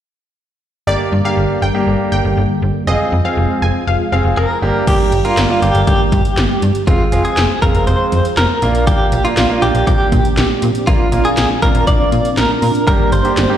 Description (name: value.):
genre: synth-pop.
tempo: 120 BPM.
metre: 4/4.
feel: straight.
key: unclear.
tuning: A4 = 439 Hz.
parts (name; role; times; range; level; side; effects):
analog pluck; second line; 0.9-4.7 s; Bb4 to Ab5; -22 LUFS; left 2 dB; chorus, analog delay.
bright grand piano; accompaniment; 0.9-13.6 s; Ab3 to Bb4; -20 LUFS; right 3 dB; none.
ensemble organ-string; sustained chords; 0.9-13.6 s; D3 to D4; -21 LUFS; right 1 dB; phaser, ensemble chorus.
slap-like FM bass; bass; 0.9-13.5 s; F1 to Bb2; -16 LUFS; equal; none.
direct-recorded clean electric guitar; melody; 4.4-13.6 s; F4 to D5; -17 LUFS; equal; tremolo.
80s electronic pad drums; drums; 4.9-13.5 s; crash cymbal, handclaps, hi-hat, kick drum, snare drum; -16 LUFS; equal; none.
room: moderate scoring stage reverb, RT60 2.0 s, digital ambience.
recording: played on a big sound system in a bare room, stone room reverb.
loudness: -12 LUFS.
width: side -10 dB against mid.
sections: 0.9-4.9 A section; 4.9-13.6 B section.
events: none.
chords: 0.9 Gm; 2.9 Fm; 4.6 Gm; 6.9 Fm; 8.6 Bb; 12.9 Gm.